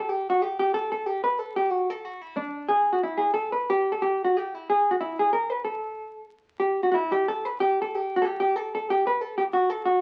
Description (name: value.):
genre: musette.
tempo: 185 BPM.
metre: 3/4.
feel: swing 54% on 8ths.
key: unclear.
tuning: A4 = 435 Hz.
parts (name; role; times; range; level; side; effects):
vintage hollow-body jazz guitar; solo; 0.0-10.0 s; D4 to B4; -26 LUFS; equal; none.
room: moderate studio reverb, RT60 0.8 s.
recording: very old 78 rpm record, vinyl crackle.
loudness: -26 LUFS.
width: mono.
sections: 0.0-10.0 A section.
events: none.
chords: none.